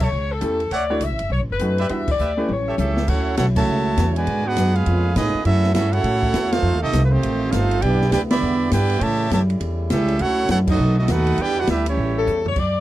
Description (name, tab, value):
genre	jazz, big band swing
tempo	202 BPM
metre	4/4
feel	swing 63% on 8ths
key	D major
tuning	A4 = 445 Hz
part	clear saxophone section	melody	0.0-3.0, 12.2-12.8 s	A4 to E5	-23 LUFS	left 4 dB	none
part	clear trumpet section	stabs	0.0-2.8 s	G4 to A5	-26 LUFS	right 3 dB	none
part	upright bass	bass	0.0-12.8 s	F#1 to A2	-21 LUFS	equal	none
part	open jazz drum kit	drums	0.0-12.7 s	crash cymbal, hi-hat, kick drum, ride cymbal, snare drum, toms	-26 LUFS	left 1 dB	none
part	bright upright piano	accompaniment	0.4-2.5 s	G3 to C#5	-25 LUFS	equal	none
part	warm trombone section	second line	2.5-12.4 s	B2 to G4	-24 LUFS	right 4 dB	none
part	brilliant trumpet section	melody	2.8-12.4 s	A3 to B5	-24 LUFS	right 2 dB	none
part	mellow trombone section	sustained chords	3.1-12.6 s	C#3 to F#4	-30 LUFS	left 1 dB	stereo widening
room	little or no reverb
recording	dry, close 1970s-style studio recording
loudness	-17 LUFS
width	side -14 dB against mid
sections	0.0-3.1 A section; 3.1-12.6 B section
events	band accent 2.1, 3.5, 6.5, 8.3, 10.6; drum fill 2.5-3.1, 12.3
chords	0.0 A7; 0.7 Dmaj9; 1.3 B7; 1.9 Em7; 2.5 A7; 3.1 Dmaj9; 4.3 G#m7b5; 4.9 C#7b13; 5.5 F#m7; 6.6 F9; 7.8 Em7; 9.0 A7; 10.2 Dmaj9; 10.8 B7; 11.4 Em7; 12.0 A7